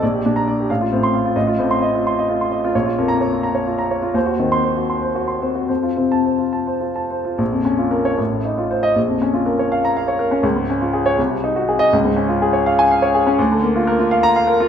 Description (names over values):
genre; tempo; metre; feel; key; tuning
classical, romantic character piece for solo piano; 69-91 BPM (dotted quarters); 6/8; rubato; Bb minor; A4 = 439 Hz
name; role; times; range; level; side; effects
clear grand piano; solo; 0.0-14.7 s; A1 to C6; -16 LUFS; equal; none
room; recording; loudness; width
moderate recital hall reverb, RT60 1.5 s; minimal, uncompressed stereo recording; -16 LUFS; side -8 dB against mid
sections
0.0-7.4 A section; 7.4-14.7 B section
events
none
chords
0.0 Gm/Bb; 0.7 F/A; 1.4 F7/A; 2.7 Bbm; 4.2 Cdim/Eb; 5.7 F; 7.4 Bbm; 8.2 F7/A; 9.0 Bbm; 10.4 Db; 11.2 Ab7/C; 11.9 Db; 13.4 Bb/D